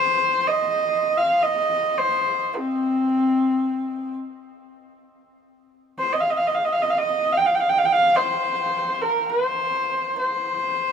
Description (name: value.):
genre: mongolian traditional, Mongolian folk.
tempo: free time.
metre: none.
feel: none.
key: C yu mode.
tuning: A4 = 441 Hz.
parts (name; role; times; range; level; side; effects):
rich horsehead fiddle; solo; 0.0-10.9 s; C4 to G5; -19 LUFS; equal; none.
room: light reverb.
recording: minimal, uncompressed stereo recording.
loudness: -19 LUFS.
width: side -7 dB against mid.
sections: 0.0-5.6 A section; 5.6-10.9 A section.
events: none.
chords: none.